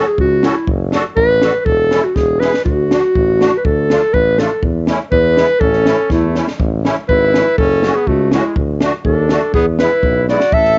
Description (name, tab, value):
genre	alpine folk, alpine dance band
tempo	122 BPM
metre	2/4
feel	straight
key	A major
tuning	A4 = 440 Hz
part	mellow clarinet	melody	0.0-10.8 s	E4 to E5	-16 LUFS	equal	none
part	musette accordion	accompaniment	0.0-10.4 s	G#3 to A4	-22 LUFS	equal	none
part	mellow tuba	bass	0.2-10.8 s	E1 to E2	-20 LUFS	equal	none
part	compact cocktail drum kit	drums	0.2-10.7 s	hi-hat, kick drum, snare drum	-21 LUFS	equal	cassette tape
part	clear trumpet	second line	5.6-10.8 s	G#3 to A4	-27 LUFS	equal	none
room	small room ambience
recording	home recording on cassette, nothing above 7.8 kHz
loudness	-14 LUFS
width	mono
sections	0.0-10.8 A section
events	drum fill 2.2-2.7, 6.1-6.6, 10.3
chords	0.0 F#m; 0.7 D/F#; 1.7 A/E; 2.2 E; 2.7 D; 3.6 Dm; 4.6 A/E; 5.1 E; 5.6 A; 7.6 F#m; 8.6 D; 9.5 E